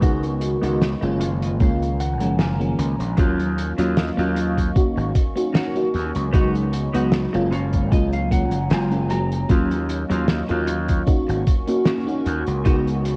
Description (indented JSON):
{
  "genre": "vaporwave",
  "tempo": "76 BPM",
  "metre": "4/4",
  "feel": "swing 54% on 16ths",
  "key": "F# major",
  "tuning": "A4 = 440 Hz",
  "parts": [
    { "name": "FM electric piano with soft pad layer", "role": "accompaniment", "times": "0.0-13.2 s", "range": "E#3 to F#4", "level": "-26 LUFS", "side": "equal", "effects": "analog chorus, analog delay" },
    { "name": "warbly tape-like pad", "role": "sustained chords", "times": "0.0-13.2 s", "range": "D#3 to C#6", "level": "-33 LUFS", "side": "equal", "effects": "chorus, built-in reverb, phaser" },
    { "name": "clean electric guitar", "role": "riff", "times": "0.0-13.1 s", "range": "F#3 to A#5", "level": "-32 LUFS", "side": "equal", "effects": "lush chorus, vintage 12-bit sampler grit, low-pass filter, analog delay" },
    { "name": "gritty slap bass", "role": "bass", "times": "0.0-13.2 s", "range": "F#1 to D#2", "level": "-27 LUFS", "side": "equal", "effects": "overdrive" },
    { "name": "electronic kick drum", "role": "drums", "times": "0.0-12.8 s", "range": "none", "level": "-21 LUFS", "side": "equal", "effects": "vintage 12-bit sampler grit" },
    { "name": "loose indie drum kit", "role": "drums", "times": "0.0-13.2 s", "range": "hi-hat, snare drum", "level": "-28 LUFS", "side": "equal", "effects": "vintage 12-bit sampler grit" }
  ],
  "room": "light reverb, small room ambience",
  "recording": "worn, warbling old tape, cassette tape, warbly pitch drift",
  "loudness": "-21 LUFS",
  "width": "mono",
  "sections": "0.0-13.2 A section",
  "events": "filter sweep on clean electric guitar 0.0-13.2; clean electric guitar fill 0.8-3.2, 7.1-9.5",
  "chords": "0.0 C#9sus4; 1.2 F#maj9; 3.2 D#m9; 4.8 G#9sus4; 6.3 C#9sus4; 7.5 F#maj9; 9.5 D#m9; 11.1 G#9sus4; 12.7 C#9sus4",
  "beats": "| 0.02 0.81 1.60 2.39 | 3.18 3.97 4.76 5.55 | 6.34 7.13 7.92 8.71 | 9.50 10.29 11.08 11.87 | 12.65"
}